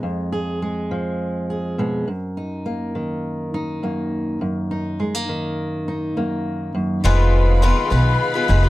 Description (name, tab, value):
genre	indie folk with a building arrangement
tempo	103 BPM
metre	4/4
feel	straight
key	Eb minor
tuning	A4 = 441 Hz
part	fingerpicked steel-string acoustic guitar	accompaniment	0.0-8.7 s	F2 to Ab4	-23 LUFS	equal	none
part	picked twelve-string acoustic guitar	accompaniment	7.0-8.7 s	F2 to Cb5	-20 LUFS	left 4 dB	none
part	warm symphonic string section	sustained chords	7.0-8.7 s	Ab4 to Cb6	-27 LUFS	right 1 dB	none
part	upright bass	bass	7.0-8.7 s	F1 to Cb2	-15 LUFS	equal	none
room	little or no reverb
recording	dry, close 1970s-style studio recording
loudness	-19 LUFS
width	side -17 dB against mid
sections	0.0-7.0 A section; 7.0-8.7 B section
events	none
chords	0.0 Fdim; 2.1 Ebm/Gb; 7.0 Fdim